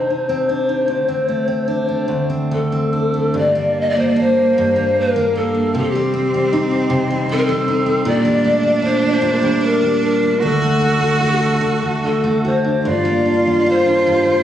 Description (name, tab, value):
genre	celtic folk, Celtic slow air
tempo	71-78 BPM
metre	3/4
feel	rubato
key	G minor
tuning	A4 = 441 Hz
part	mellow hollow pan flute	melody	0.0-14.4 s	G4 to Eb5	-18 LUFS	left 2 dB	none
part	picked steel-string acoustic guitar	accompaniment	0.0-14.4 s	D2 to F#4	-19 LUFS	right 1 dB	none
part	warm cello	second line	3.4-14.4 s	Bb3 to F#4	-20 LUFS	right 3 dB	none
room	moderate recital hall reverb, RT60 1.6 s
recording	recorded on a phone in the room, studio reverb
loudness	-14 LUFS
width	side -10 dB against mid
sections	0.0-3.4 A section; 3.4-14.4 A section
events	none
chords	0.0 Cmadd9; 0.9 D5; 3.4 Gmadd9; 5.8 Cm; 8.1 Gmadd9/Bb; 10.4 D; 12.9 Gm7